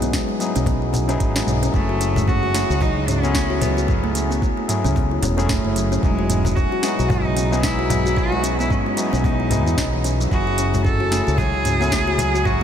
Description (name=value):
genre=organic downtempo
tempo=112 BPM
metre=4/4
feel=swing 58% on 16ths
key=F# dorian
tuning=A4 = 440 Hz
part: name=overdriven tine electric piano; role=accompaniment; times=0.0-12.6 s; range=F#3 to G#4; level=-25 LUFS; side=left 3 dB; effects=sidechain pumping, ping-pong delay
part: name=kalimba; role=arpeggios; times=0.0-12.6 s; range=C#3 to F#4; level=-24 LUFS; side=equal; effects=ping-pong delay
part: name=mellow fretless electric bass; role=bass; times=0.0-12.6 s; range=E1 to E2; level=-23 LUFS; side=equal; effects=tube saturation, wide subtle chorus, sidechain pumping
part: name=afro-pop drum kit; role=drums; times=0.0-12.6 s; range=hi-hat, shaker, snare drum, toms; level=-27 LUFS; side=right 1 dB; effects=studio reverb
part: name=cajon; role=percussion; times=0.0-12.3 s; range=none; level=-29 LUFS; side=left 2 dB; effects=none
part: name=electronic kick drum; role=drums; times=0.1-12.6 s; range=none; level=-22 LUFS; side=equal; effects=overdrive, studio reverb
part: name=clear cello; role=melody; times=1.7-12.6 s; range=G#3 to A4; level=-25 LUFS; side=right 2 dB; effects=tape echo
room=moderate huge ambient reverb, RT60 8.5 s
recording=dreamy mix soaked in reverb, faint mains hum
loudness=-17 LUFS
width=side -9 dB against mid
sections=0.0-1.7 A section; 1.7-12.6 B section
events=none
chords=0.0 Emaj9; 1.7 F#m9; 6.0 Emaj9; 10.3 F#m9